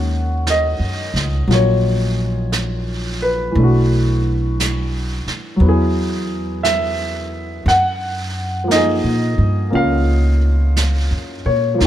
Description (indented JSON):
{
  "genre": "jazz ballad",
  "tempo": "58 BPM",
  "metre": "4/4",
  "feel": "swing 67% on 8ths",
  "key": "unclear",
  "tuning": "A4 = 441 Hz",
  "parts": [
    { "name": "warm baby grand piano", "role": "accompaniment", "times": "0.0-11.9 s", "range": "Bb2 to Gb5", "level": "-19 LUFS", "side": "equal", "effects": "none" },
    { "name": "upright bass", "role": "bass", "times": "0.0-11.9 s", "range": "Bb1 to Bb2", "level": "-18 LUFS", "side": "equal", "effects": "none" },
    { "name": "jazz brush drum kit", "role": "drums", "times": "0.5-11.9 s", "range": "brushed snare drum, hi-hat, snare drum", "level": "-26 LUFS", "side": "right 3 dB", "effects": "none" }
  ],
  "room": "little or no reverb",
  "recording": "none",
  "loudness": "-15 LUFS",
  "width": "side -12 dB against mid",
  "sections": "0.0-11.9 A section",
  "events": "none",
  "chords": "0.0 Ebm7; 3.6 Bm7; 5.6 Eadd9; 7.7 Gbmaj7"
}